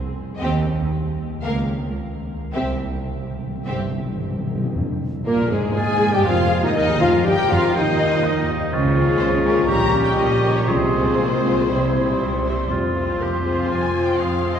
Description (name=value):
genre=classical, dramatic, fast romantic movement for symphony orchestra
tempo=104-126 BPM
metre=4/4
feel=rubato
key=F minor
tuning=A4 = 441 Hz
part: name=warm symphonic violin section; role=melody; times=0.4-14.6 s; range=Ab4 to Bb5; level=-27 LUFS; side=left 3 dB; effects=none
part: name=rich symphonic violin section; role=second line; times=0.4-14.6 s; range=Ab3 to C5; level=-30 LUFS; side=left 3 dB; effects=none
part: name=warm symphonic viola section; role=accompaniment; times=0.4-14.6 s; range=F3 to Ab4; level=-27 LUFS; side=right 1 dB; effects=none
part: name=rich symphonic cello section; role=bass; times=0.4-14.6 s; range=C2 to Db3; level=-26 LUFS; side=right 2 dB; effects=none
part: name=warm symphonic double bass section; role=bass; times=0.4-14.6 s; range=F1 to Eb2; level=-26 LUFS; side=right 1 dB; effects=none
part: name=timpani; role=percussion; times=2.5-5.5, 10.7-11.4 s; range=F2 to C3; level=-29 LUFS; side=equal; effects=none
part: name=mellow hollow silver concert flute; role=second line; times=5.3-14.6 s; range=Ab4 to Db6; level=-27 LUFS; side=left 1 dB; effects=none
part: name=warm clarinet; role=second line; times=5.3-14.6 s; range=Ab3 to Ab4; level=-28 LUFS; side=left 3 dB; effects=none
part: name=dark bassoon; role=accompaniment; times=5.3-14.6 s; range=Ab2 to C4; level=-27 LUFS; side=right 2 dB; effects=none
part: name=dark French horn section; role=sustained chords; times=5.3-14.6 s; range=Ab2 to G4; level=-25 LUFS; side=left 2 dB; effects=none
part: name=clear oboe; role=second line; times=5.8-14.6 s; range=Eb4 to C5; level=-28 LUFS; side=right 2 dB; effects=none
room=wet cathedral reverb, RT60 6.5 s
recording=recorded in a church or concert hall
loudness=-18 LUFS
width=side -8 dB against mid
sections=0.0-4.8 A section; 4.8-14.6 B section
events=timpani fill 2.5-4.8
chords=0.4 Cm/Eb; 1.4 Bbm/Db; 2.5 C; 4.8 Fm; 6.8 Eb; 7.8 Cm/Eb; 8.7 Db; 9.7 Gdim/Bb; 10.7 Fm/C; 11.7 C; 12.7 Fm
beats=| 0.41 0.92 1.44 1.98 | 2.53 3.10 3.66 4.22 | 4.77 5.27 5.77 6.27 | 6.77 7.26 7.76 8.24 | 8.73 9.21 9.69 10.18 | 10.68 11.18 11.69 12.20 | 12.71 13.21 13.71 14.20